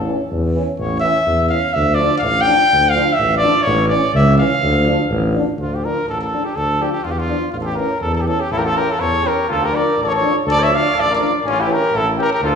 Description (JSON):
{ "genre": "balkan folk", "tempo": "124 BPM", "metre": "2/4", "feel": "swing 56% on 16ths", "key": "D harmonic minor", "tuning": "A4 = 440 Hz", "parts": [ { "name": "warm tuba", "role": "bass", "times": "0.0-12.6 s", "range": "A1 to E2", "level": "-20 LUFS", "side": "equal", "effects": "none" }, { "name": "mellow euphonium", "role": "accompaniment", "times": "0.1-12.3 s", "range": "E3 to F3", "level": "-27 LUFS", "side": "right 2 dB", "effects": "none" }, { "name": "warm euphonium", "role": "accompaniment", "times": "0.1-12.3 s", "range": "C#4 to D4", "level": "-25 LUFS", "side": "left 1 dB", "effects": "none" }, { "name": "clear trumpet", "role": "melody", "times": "0.8-12.6 s", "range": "F4 to G5", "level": "-17 LUFS", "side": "equal", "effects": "none" }, { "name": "warm flugelhorn", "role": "second line", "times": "8.5-12.6 s", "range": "C#4 to D5", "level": "-20 LUFS", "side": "left 3 dB", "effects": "none" } ], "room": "wet recital hall reverb, RT60 1.8 s", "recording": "recorded in a church or concert hall, small room ambience", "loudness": "-14 LUFS", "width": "side -6 dB against mid", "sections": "0.0-5.6 A section; 5.6-12.6 B section", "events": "trumpet solo 0.0-5.6", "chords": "0.0 A; 1.8 Dm; 3.7 A; 4.6 Dm; 7.5 A; 9.5 Dm; 11.4 A", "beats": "0.31 | 0.79 1.27 | 1.75 2.23 | 2.71 3.19 | 3.67 4.15 | 4.63 5.11 | 5.59 6.08 | 6.56 7.05 | 7.54 8.02 | 8.51 9.00 | 9.49 9.98 | 10.46 10.95 | 11.44 11.92 | 12.41" }